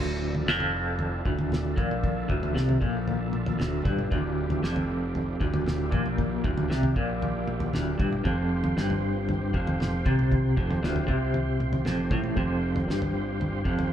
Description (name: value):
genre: psychedelic rock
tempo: 116 BPM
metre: 4/4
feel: straight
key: D minor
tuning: A4 = 440 Hz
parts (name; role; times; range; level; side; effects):
- tonewheel organ; sustained chords; 0.0-13.9 s; C4 to C5; -36 LUFS; right 4 dB; slow rotary speaker, overdrive, chorus vibrato
- twangy electric guitar; riff; 0.0-13.9 s; D2 to C3; -27 LUFS; equal; tremolo
- fuzz fingered electric bass; bass; 0.0-13.9 s; D1 to C2; -33 LUFS; equal; overdrive
- cloth-damped thuddy drum kit; drums; 0.3-13.9 s; kick drum, snare drum, toms; -29 LUFS; equal; none
room: moderate stone room reverb, RT60 1.2 s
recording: band playing live in one room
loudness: -24 LUFS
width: side -10 dB against mid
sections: 0.0-13.9 A section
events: none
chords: 0.0 Dmadd9; 8.3 Fsus2